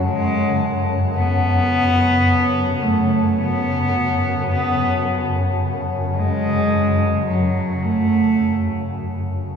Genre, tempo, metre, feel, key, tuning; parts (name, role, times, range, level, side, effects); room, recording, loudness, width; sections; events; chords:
dark ambient drone; 54 BPM; 4/4; straight; F# minor; A4 = 440 Hz
rich cello; melody; 0.0-8.9 s; F#3 to B3; -19 LUFS; right 1 dB; analog delay
dark analog pad; sustained chords; 0.0-9.6 s; C#4 to A5; -26 LUFS; left 4 dB; chorus
swarming drone; drone; 0.0-9.6 s; F#2 to C#3; -21 LUFS; equal; built-in reverb
wet plate reverb, RT60 3.2 s; echo-heavy mix; -17 LUFS; side -6 dB against mid
0.0-9.6 A section
fade-out 7.1-9.6
0.0 F#m